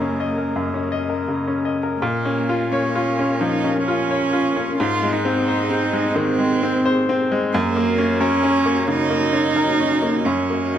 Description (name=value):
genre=neoclassical piano and strings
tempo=87 BPM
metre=4/4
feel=rubato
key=Bb minor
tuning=A4 = 437 Hz
part: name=warm cello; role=second line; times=0.0-10.8 s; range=Bb3 to F4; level=-22 LUFS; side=right 4 dB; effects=none
part: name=bright baby grand piano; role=accompaniment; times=0.0-10.8 s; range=Gb2 to Eb5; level=-20 LUFS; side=left 2 dB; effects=none
part: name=airy breathy pad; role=sustained chords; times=0.0-10.8 s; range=Bb3 to F5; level=-28 LUFS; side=left 2 dB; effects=chorus
room=light reverb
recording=none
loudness=-17 LUFS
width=side -10 dB against mid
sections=0.0-2.0 A section; 2.0-10.8 B section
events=none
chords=0.0 Ebm7/Gb; 2.0 Bbm; 4.8 Ab; 7.5 Gb; 10.2 Ebm7/Gb